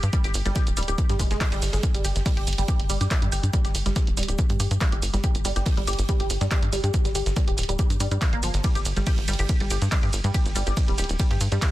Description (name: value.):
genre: driving peak-time techno.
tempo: 141 BPM.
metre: 4/4.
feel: straight.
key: unclear.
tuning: A4 = 444 Hz.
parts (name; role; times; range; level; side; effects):
tight sequencer bass; bass; 0.0-11.6 s; D1 to G2; -26 LUFS; equal; sidechain pumping.
punchy analog drum machine; drums; 0.0-11.7 s; handclaps, hi-hat, ride cymbal, shaker; -30 LUFS; right 2 dB; none.
resonant blip pluck; riff; 0.1-11.7 s; F3 to G4; -31 LUFS; equal; phaser, cassette tape, sidechain pumping, digital delay.
electronic kick drum; drums; 0.1-11.7 s; none; -24 LUFS; equal; none.
modern studio drum kit; drums; 0.1-11.7 s; hi-hat, shaker, snare drum; -43 LUFS; right 3 dB; none.
room: small room ambience.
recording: dense, heavily limited modern master.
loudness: -21 LUFS.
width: side -16 dB against mid.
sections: 0.0-11.7 A section.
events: none.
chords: none.